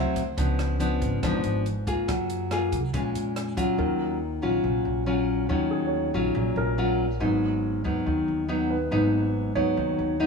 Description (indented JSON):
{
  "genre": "bossa nova",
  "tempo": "140 BPM",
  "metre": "4/4",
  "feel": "straight",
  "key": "Eb minor from 3.8 s",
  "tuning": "A4 = 442 Hz",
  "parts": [
    { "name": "nylon-string guitar", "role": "accompaniment", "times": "0.0-10.3 s", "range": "Ab2 to Ab4", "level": "-25 LUFS", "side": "left 2 dB", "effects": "none" },
    { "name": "warm concert grand piano", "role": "accompaniment", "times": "0.0-0.4, 3.8-10.3 s", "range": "Ab4 to Db5", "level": "-32 LUFS", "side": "right 4 dB", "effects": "none" },
    { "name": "upright bass", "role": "bass", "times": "0.0-10.3 s", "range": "Ab1 to Gb2", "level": "-30 LUFS", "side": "right 2 dB", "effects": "none" },
    { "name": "compact cocktail drum kit", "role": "drums", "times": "0.2-3.7 s", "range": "hi-hat, kick drum, rim click", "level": "-34 LUFS", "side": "right 1 dB", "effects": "none" }
  ],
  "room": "light reverb",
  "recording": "small room ambience",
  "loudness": "-23 LUFS",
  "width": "side -5 dB against mid",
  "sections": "0.0-3.8 A section; 3.8-10.3 B section",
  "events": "none",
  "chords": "0.4 Db7b9; 2.1 Gbmaj9; 2.9 Bbm7; 3.8 Ebm9; 7.2 Abm7"
}